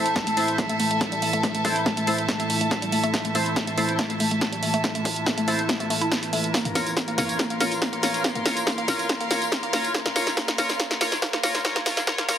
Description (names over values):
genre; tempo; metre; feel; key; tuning
driving peak-time techno; 141 BPM; 4/4; straight; A phrygian; A4 = 439 Hz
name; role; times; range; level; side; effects
sync-sweep polysynth; stabs; 0.0-12.4 s; E4 to Db5; -28 LUFS; left 1 dB; lush chorus, vintage 12-bit sampler grit, sidechain pumping, tape echo
metallic inharmonic drone; drone; 0.0-12.4 s; A2 to E3; -32 LUFS; right 1 dB; chorus, built-in reverb, sidechain pumping
warm chamber string section; texture; 0.0-12.4 s; A4 to C6; -28 LUFS; equal; sidechain pumping
punchy analog drum machine; drums; 0.1-12.4 s; hi-hat, snare drum, tambourine, toms; -26 LUFS; equal; overdrive
woody wave-folded pluck; riff; 0.2-12.3 s; G3 to E4; -30 LUFS; equal; chorus, sidechain pumping, digital delay
electronic kick drum; drums; 0.2-12.2 s; none; -31 LUFS; equal; high-pass filter on kick, high-pass filter on room
room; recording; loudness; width
moderate plate reverb, RT60 1.1 s; heavily compressed radio sound, multiband compression, high-pass filter; -21 LUFS; side -9 dB against mid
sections
0.0-12.4 A section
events
build-up 0.0-12.4; drum fill 0.0-12.4; filter sweep on synth arpeggio sound 0.0-12.4; filter sweep 0.0-12.4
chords
0.0 Am; 6.5 Bbm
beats
0.16 0.58 1.01 | 1.44 1.86 2.29 2.71 | 3.14 3.56 3.99 4.41 | 4.84 5.26 5.69 6.12 | 6.54 6.97 7.39 7.82 | 8.24 8.67 9.09 9.52 | 9.95 10.37 10.80 11.22 | 11.65 12.07